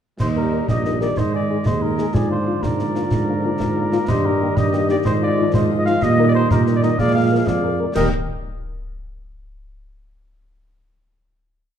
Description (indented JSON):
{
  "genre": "military-style march for wind band",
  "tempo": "124 BPM (dotted quarters)",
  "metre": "6/8",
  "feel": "straight",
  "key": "Eb major",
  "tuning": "A4 = 440 Hz",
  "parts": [
    { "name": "mellow cornet", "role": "melody", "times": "0.2-8.1 s", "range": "Ab4 to F5", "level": "-25 LUFS", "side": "equal", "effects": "none" },
    { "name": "mellow woodwind section", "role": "second line", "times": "0.2-8.1 s", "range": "F4 to G5", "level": "-26 LUFS", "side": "left 3 dB", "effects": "none" },
    { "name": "dark trombone section", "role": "sustained chords", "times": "0.2-8.1 s", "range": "D3 to Bb3", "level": "-25 LUFS", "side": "right 1 dB", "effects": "none" },
    { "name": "mellow tuba", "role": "bass", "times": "0.2-8.1 s", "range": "Bb1 to Bb2", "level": "-21 LUFS", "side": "right 3 dB", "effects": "none" },
    { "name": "concert snare drum, clash cymbals and concert bass drum", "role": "drums", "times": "0.2-8.1 s", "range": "none", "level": "-24 LUFS", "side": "equal", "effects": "none" },
    { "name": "mellow French horn section", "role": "accompaniment", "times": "0.4-8.1 s", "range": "G3 to Bb4", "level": "-26 LUFS", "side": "left 6 dB", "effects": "none" }
  ],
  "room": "wet large studio reverb, RT60 1.3 s",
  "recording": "dark, warm production",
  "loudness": "-16 LUFS",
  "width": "side -8 dB against mid",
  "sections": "0.2-8.0 A section; 8.0-8.9 final chord",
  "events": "none",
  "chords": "0.2 Eb; 1.2 Ab5; 2.1 Bb7/Ab; 4.1 Eb/G; 5.1 Fm7/Ab; 6.0 Eb/Bb; 7.0 Bb7; 8.0 Eb"
}